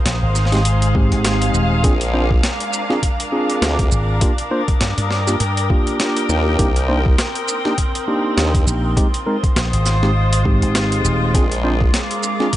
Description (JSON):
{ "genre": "glitch hop", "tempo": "101 BPM", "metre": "4/4", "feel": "swing 57% on 16ths", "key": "unclear", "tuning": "A4 = 440 Hz", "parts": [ { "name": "warbly tape-like pad", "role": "sustained chords", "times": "0.0-12.6 s", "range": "Ab3 to Eb6", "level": "-25 LUFS", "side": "right 2 dB", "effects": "chorus, built-in reverb, sidechain pumping" }, { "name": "muted studio string section", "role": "texture", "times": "0.0-12.6 s", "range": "C4 to G5", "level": "-25 LUFS", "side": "left 3 dB", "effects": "sidechain pumping" }, { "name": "slap bass with an envelope filter", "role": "bass", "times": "0.1-11.3 s", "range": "Eb1 to G2", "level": "-18 LUFS", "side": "equal", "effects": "none" }, { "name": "boom bap sampler-style drum kit", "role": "drums", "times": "0.1-12.6 s", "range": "hi-hat, shaker, snare drum", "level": "-23 LUFS", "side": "equal", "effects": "overdrive" }, { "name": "mellow tine electric piano", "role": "stabs", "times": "0.5-12.5 s", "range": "Ab3 to C5", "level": "-22 LUFS", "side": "equal", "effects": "sidechain pumping, digital delay" }, { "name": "electronic kick drum", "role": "drums", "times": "0.9-12.6 s", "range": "none", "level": "-18 LUFS", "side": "equal", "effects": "overdrive" }, { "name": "formant-sweep wobble bass", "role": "bass", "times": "1.8-11.9 s", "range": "Bb1 to Eb2", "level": "-18 LUFS", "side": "equal", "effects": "chorus, tube saturation" } ], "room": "light reverb", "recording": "nothing above 10.4 kHz", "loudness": "-15 LUFS", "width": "side -14 dB against mid", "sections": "0.0-12.6 A section", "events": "none", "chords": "0.0 Fm7; 1.8 Bb7; 4.2 Ebmaj7; 6.6 Cm7; 9.0 Fm7; 11.3 Bb7" }